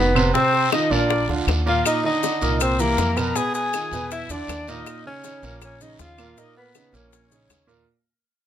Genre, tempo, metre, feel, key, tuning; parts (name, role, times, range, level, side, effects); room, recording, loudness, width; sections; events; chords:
Afro-Cuban jazz; 159 BPM; 4/4; straight; A4 = 440 Hz
breathy tenor saxophone; melody; 0.0-7.7 s; Bb3 to Bb4; -24 LUFS; equal
bright reedy concert flute; second line; 0.0-7.7 s; Bb4 to Bb5; -28 LUFS; left 5 dB
warm grand piano; accompaniment; 0.0-7.8 s; Bb2 to C5; -25 LUFS; right 5 dB
upright bass; bass; 0.0-7.8 s; F1 to F2; -25 LUFS; equal
claves; percussion; 0.2-7.7 s; -30 LUFS; left 5 dB
guiro; percussion; 0.2-7.9 s; -33 LUFS; right 2 dB
bongos; percussion; 0.4-7.9 s; -28 LUFS; left 10 dB
maracas; percussion; 1.9-7.9 s; -33 LUFS; left 7 dB
light reverb; close, detailed microphones; -19 LUFS; side -10 dB against mid
0.0-7.9 A section
fade-out 0.0-7.9
0.3 F7sus4; 1.1 Bb; 1.9 Eb5; 2.6 C7; 3.4 Fm7b5; 4.1 E5; 4.9 Ebsus2